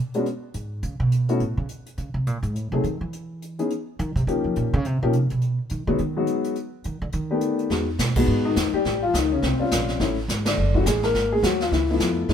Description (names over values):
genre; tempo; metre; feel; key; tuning
jazz piano trio; 210 BPM; 4/4; swing 60% on 8ths; unclear; A4 = 440 Hz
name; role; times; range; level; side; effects
dark upright piano; melody; 0.1-12.3 s; B2 to A#4; -23 LUFS; left 3 dB; none
jazz brush drum kit; drums; 0.1-12.3 s; brushed snare drum, crash cymbal, hi-hat, kick drum, ride cymbal, snare drum; -28 LUFS; right 1 dB; none
upright bass; bass; 0.5-12.3 s; F#1 to E3; -24 LUFS; right 1 dB; none
room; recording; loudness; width
light reverb; band playing live in one room; -21 LUFS; side -8 dB against mid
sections
0.0-7.7 A section; 7.7-12.3 B section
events
upright bass solo 0.0-7.7; band accent 8.1, 10.4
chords
0.0 N.C.; 0.8 A; 2.0 G#add9; 2.6 G#(b9) (rootless); 3.1 C#madd9 (rootless); 4.3 D#7; 5.4 G#m7; 6.6 B7alt; 7.7 Emaj7; 8.9 A7alt; 10.0 Dmaj9; 11.1 G#sus2; 11.7 C#7alt